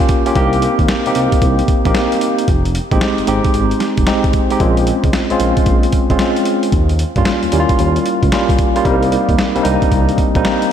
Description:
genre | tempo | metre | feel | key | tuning
R&B, new jack swing | 113 BPM | 4/4 | swing 64% on 16ths | unclear | A4 = 440 Hz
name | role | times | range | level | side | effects
barky tine electric piano | accompaniment | 0.0-10.7 s | G3 to G4 | -15 LUFS | equal | fast stereo tremolo, slapback echo
boom bap sampler-style drum kit | drums | 0.0-10.7 s | hi-hat, kick drum, snare drum | -16 LUFS | equal | none
smooth synth bass | bass | 0.4-10.4 s | F1 to G2 | -18 LUFS | equal | none
room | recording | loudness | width
moderate lush hall reverb, RT60 2.6 s | big arena sound | -12 LUFS | side -9 dB against mid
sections
0.0-10.7 A section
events
none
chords
0.4 Cm7; 2.5 Fm7; 4.6 Bbm7; 6.7 Eb9; 8.9 Cm7

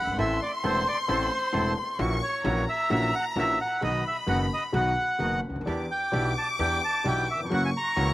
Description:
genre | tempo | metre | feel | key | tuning
tango | 131 BPM | 4/4 | rubato | E minor | A4 = 440 Hz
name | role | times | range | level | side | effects
bandoneon | melody | 0.0-8.1 s | C5 to A#5 | -28 LUFS | right 1 dB | slapback echo
rich chamber violin section | second line | 0.0-8.1 s | A#5 to D6 | -32 LUFS | left 2 dB | slapback echo
dark upright piano | accompaniment | 0.0-8.1 s | E1 to A4 | -30 LUFS | left 2 dB | none
upright bass | bass | 0.0-8.1 s | E1 to E2 | -31 LUFS | right 1 dB | none
bandoneon | stabs | 0.2-8.1 s | A#3 to A4 | -38 LUFS | right 5 dB | slapback echo
room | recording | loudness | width
little or no reverb | recorded outdoors, with no room sound, vinyl crackle | -24 LUFS | side -16 dB against mid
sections
0.0-8.1 A section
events
none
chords
0.2 Am; 2.0 F#7/A#; 3.8 B; 5.7 Em7; 7.5 F#7

